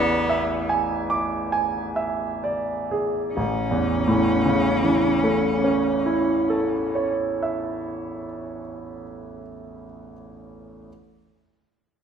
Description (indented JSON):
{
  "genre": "classical, romantic duo for cello and grand piano",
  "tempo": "31-40 BPM",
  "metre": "3/4",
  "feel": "rubato",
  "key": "A major",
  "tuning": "A4 = 440 Hz",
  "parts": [
    { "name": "rich cello", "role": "melody", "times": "0.0-7.1 s", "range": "B3 to C#4", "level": "-27 LUFS", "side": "left 1 dB", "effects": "none" },
    { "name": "warm grand piano", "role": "accompaniment", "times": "0.0-10.9 s", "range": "A1 to D6", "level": "-22 LUFS", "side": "right 1 dB", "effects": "none" }
  ],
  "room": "wet recital hall reverb, RT60 1.5 s",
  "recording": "minimal, uncompressed stereo recording",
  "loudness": "-20 LUFS",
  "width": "side -7 dB against mid",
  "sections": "0.0-3.3 A section; 3.3-8.7 B section",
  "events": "slowing down 0.0-3.3",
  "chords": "0.0 E7/A; 3.3 A"
}